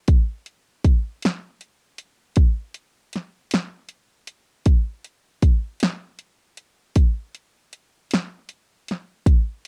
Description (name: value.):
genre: blues.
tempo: 52 BPM (dotted quarters).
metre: 12/8.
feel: straight.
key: none.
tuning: none.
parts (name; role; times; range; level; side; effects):
house drum kit; drums; 0.1-9.7 s; hi-hat, kick drum, snare drum; -20 LUFS; equal; none.
room: little or no reverb.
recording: dry, close 1970s-style studio recording.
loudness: -22 LUFS.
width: mono.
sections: 0.0-9.7 A section.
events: none.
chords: none.